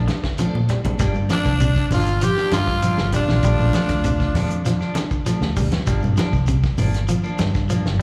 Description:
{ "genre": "afrobeat", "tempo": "98 BPM", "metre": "4/4", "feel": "straight", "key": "G minor", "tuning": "A4 = 440 Hz", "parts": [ { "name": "semi-hollow electric guitar", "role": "stabs", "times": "0.0-8.0 s", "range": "F3 to D4", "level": "-34 LUFS", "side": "equal", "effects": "spring reverb, slapback echo" }, { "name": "fingered electric bass", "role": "bass", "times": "0.0-8.0 s", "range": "G1 to Bb2", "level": "-23 LUFS", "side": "equal", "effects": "none" }, { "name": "electric guitar at the edge of break-up", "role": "arpeggios", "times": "0.1-8.0 s", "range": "C3 to G3", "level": "-28 LUFS", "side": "equal", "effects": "slapback echo" }, { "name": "warm soul drum kit", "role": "drums", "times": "0.1-8.0 s", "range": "hi-hat, kick drum, snare drum", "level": "-28 LUFS", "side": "equal", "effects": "none" }, { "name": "shekere", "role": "percussion", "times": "0.1-8.0 s", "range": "none", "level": "-31 LUFS", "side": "equal", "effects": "none" }, { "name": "tonewheel organ", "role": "accompaniment", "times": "0.4-0.6 s", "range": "C4 to A4", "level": "-40 LUFS", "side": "equal", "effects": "none" }, { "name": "congas", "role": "percussion", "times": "0.4-7.5 s", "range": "none", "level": "-29 LUFS", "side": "equal", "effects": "none" }, { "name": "growling tenor saxophone", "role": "melody", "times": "1.3-4.9 s", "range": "D4 to G4", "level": "-26 LUFS", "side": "equal", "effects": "slapback echo" }, { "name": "brilliant trumpet", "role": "second line", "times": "1.3-4.9 s", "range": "D4 to G4", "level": "-34 LUFS", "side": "equal", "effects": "slapback echo" } ], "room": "light reverb, small room reverb", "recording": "live gig heard through the venue's PA, club reverb", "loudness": "-20 LUFS", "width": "mono", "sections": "0.0-1.0 A section; 1.0-8.0 B section", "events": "drum fill 0.5-1.0", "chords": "0.0 Bbmaj7; 1.0 Gm7; 3.4 Bbmaj7; 5.9 Gm7" }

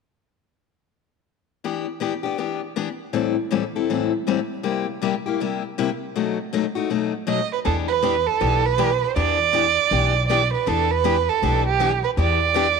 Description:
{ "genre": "acoustic string swing (jazz manouche)", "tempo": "160 BPM", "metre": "4/4", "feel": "swing 62% on 8ths", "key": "E minor", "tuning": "A4 = 440 Hz", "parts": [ { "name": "picked steel-string acoustic guitar", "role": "accompaniment", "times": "1.6-12.7 s", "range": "A2 to A4", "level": "-23 LUFS", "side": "left 9 dB", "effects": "none" }, { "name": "warm violin", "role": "melody", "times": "7.3-12.8 s", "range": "G4 to D#5", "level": "-19 LUFS", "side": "right 10 dB", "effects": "none" }, { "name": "upright bass", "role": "bass", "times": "7.7-12.8 s", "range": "B1 to E2", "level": "-24 LUFS", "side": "equal", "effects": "none" } ], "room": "moderate echo chamber reverb, RT60 2.7 s", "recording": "1960s-style stereo with parts hard left and right", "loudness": "-19 LUFS", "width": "side -5 dB against mid", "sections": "1.6-7.7 A section; 7.7-12.8 B section", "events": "none", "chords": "1.6 Em7; 3.1 Am7; 4.7 C7; 6.2 B7; 7.7 Em7" }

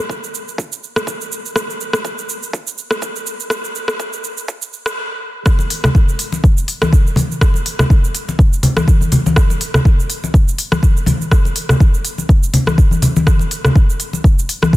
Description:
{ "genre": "house", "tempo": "123 BPM", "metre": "4/4", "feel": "swing 55% on 16ths", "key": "none", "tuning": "none", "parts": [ { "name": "afro-pop drum kit", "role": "drums", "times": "0.0-14.8 s", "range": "hi-hat, rim click, shaker", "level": "-20 LUFS", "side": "equal", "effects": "studio reverb" }, { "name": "electronic kick drum", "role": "drums", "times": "0.1-14.8 s", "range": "none", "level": "-11 LUFS", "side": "equal", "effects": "high-pass filter on kick, studio reverb" }, { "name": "congas", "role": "percussion", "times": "5.6-14.7 s", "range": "none", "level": "-16 LUFS", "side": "left 1 dB", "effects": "none" } ], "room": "digital ambience", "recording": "dense, heavily limited modern master, high-pass filter", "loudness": "-13 LUFS", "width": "side -17 dB against mid", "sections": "0.0-5.5 A section; 5.5-14.8 B section", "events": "build-up 0.0-5.5; drop 5.5-14.8", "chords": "none" }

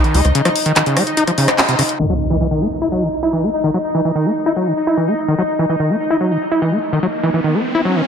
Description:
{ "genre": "psychedelic trance", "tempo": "146 BPM", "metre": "4/4", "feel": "straight", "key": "Eb phrygian", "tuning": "A4 = 439 Hz", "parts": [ { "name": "pulsing gated texture", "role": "sustained chords", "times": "0.0-8.1 s", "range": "Eb4 to Eb5", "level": "-20 LUFS", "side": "left 1 dB", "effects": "chorus, built-in reverb" }, { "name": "overdriven acid bass", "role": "riff", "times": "0.0-8.0 s", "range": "C3 to Fb4", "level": "-17 LUFS", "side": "equal", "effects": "auto-pan, dub echo" }, { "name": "drum and bass drum kit", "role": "drums", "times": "0.0-2.1 s", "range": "crash cymbal, handclaps, hi-hat, rim click", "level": "-17 LUFS", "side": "equal", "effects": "low-pass filter on hats, low-pass filter on snare, low-pass filter on cymbals, low-pass filter on room" }, { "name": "impact and riser", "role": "sound effects", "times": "2.0-8.1 s", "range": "none", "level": "-23 LUFS", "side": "equal", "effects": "none" } ], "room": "moderate plate reverb, RT60 1.8 s", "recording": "low-pass filter", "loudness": "-14 LUFS", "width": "side -7 dB against mid", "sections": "0.0-2.0 A section; 2.0-8.1 B section", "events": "filter sweep on acid bass 0.0-2.0; band accent 1.6; impact 2.0-3.6; filter sweep 2.0-8.1; riser 6.1-8.1", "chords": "0.0 Db5; 2.0 Eb5" }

